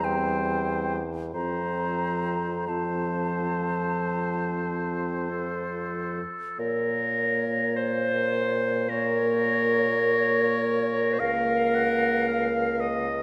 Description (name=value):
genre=classical, slow romantic movement for wind quintet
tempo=44-56 BPM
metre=4/4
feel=rubato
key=Bb minor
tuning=A4 = 440 Hz
part: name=hollow concert flute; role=melody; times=0.0-13.1 s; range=Db5 to Bb5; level=-34 LUFS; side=equal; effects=none
part: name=clear oboe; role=second line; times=0.0-13.2 s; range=C5 to Gb5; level=-34 LUFS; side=equal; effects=none
part: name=clear clarinet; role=accompaniment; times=0.0-13.1 s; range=C4 to C5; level=-30 LUFS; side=equal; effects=none
part: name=mellow French horn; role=accompaniment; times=0.0-13.1 s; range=F3 to Bb3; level=-35 LUFS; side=equal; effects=none
part: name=warm bassoon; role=bass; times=0.0-13.2 s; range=Db2 to Bb2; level=-34 LUFS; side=equal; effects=none
room=wet concert hall reverb, RT60 2.0 s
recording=none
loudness=-26 LUFS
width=mono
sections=0.0-6.6 A section; 6.6-13.2 A section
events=none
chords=0.0 C/E; 1.3 F; 6.6 Bbm; 11.2 Bbm/Db